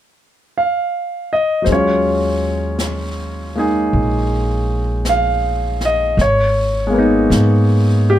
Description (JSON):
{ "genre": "jazz ballad", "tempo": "53 BPM", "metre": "4/4", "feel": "swing 67% on 8ths", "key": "Eb minor", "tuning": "A4 = 441 Hz", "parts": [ { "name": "clear grand piano", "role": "accompaniment", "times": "0.6-8.2 s", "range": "Gb3 to F5", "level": "-16 LUFS", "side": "equal", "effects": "none" }, { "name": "upright bass", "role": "bass", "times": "1.7-8.2 s", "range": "Ab1 to Ab2", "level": "-18 LUFS", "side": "equal", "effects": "none" }, { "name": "jazz brush drum kit", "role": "drums", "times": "1.7-8.2 s", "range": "brushed snare drum, hi-hat, snare drum", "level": "-29 LUFS", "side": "left 2 dB", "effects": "none" } ], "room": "light reverb", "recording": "none", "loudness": "-14 LUFS", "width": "side -12 dB against mid", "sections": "0.0-1.7 A section; 1.7-8.2 B section", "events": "none", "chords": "0.0 N.C.; 1.7 Ebm11; 6.2 Abm" }